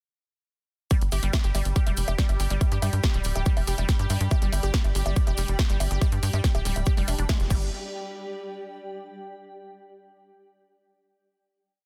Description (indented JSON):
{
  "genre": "psychedelic trance",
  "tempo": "141 BPM",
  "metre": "4/4",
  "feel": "straight",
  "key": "unclear",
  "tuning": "A4 = 440 Hz",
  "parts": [
    { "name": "bubbling stepped-filter texture", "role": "sustained chords", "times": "1.2-7.5 s", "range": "G3 to G4", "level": "-42 LUFS", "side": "equal", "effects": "chorus, built-in reverb, sidechain pumping" },
    { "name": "unison pluck", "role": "riff", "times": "0.9-7.7 s", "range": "G3 to G4", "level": "-38 LUFS", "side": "equal", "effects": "sidechain pumping, dub echo" },
    { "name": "big-room dance drum kit", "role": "drums", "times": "0.9-7.6 s", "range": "bongos, crash cymbal, hi-hat, snare drum", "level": "-36 LUFS", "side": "equal", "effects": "none" },
    { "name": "electronic kick drum", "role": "drums", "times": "0.9-7.6 s", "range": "none", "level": "-26 LUFS", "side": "equal", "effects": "none" },
    { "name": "cabasa", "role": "percussion", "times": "0.9-7.7 s", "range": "none", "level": "-44 LUFS", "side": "equal", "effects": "none" },
    { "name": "granular cloud pad", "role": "texture", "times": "2.4-9.4 s", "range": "G4 to G5", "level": "-42 LUFS", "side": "equal", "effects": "built-in reverb, sidechain pumping" },
    { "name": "tight sequencer bass", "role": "bass", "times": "1.0-7.7 s", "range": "D1 to G2", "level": "-28 LUFS", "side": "equal", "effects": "none" }
  ],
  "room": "little or no reverb",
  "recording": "dense, heavily limited modern master",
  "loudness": "-25 LUFS",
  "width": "mono",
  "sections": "0.9-7.7 drop; 7.7-9.4 final note",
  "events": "drop 0.9-7.7; band accent 7.3",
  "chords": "0.9 G5",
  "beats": "| 0.91 1.33 1.76 2.19 | 2.61 3.04 3.46 3.89 | 4.31 4.74 5.16 5.59 | 6.01 6.44 6.87 7.29 | 7.72 8.14 8.57 8.99"
}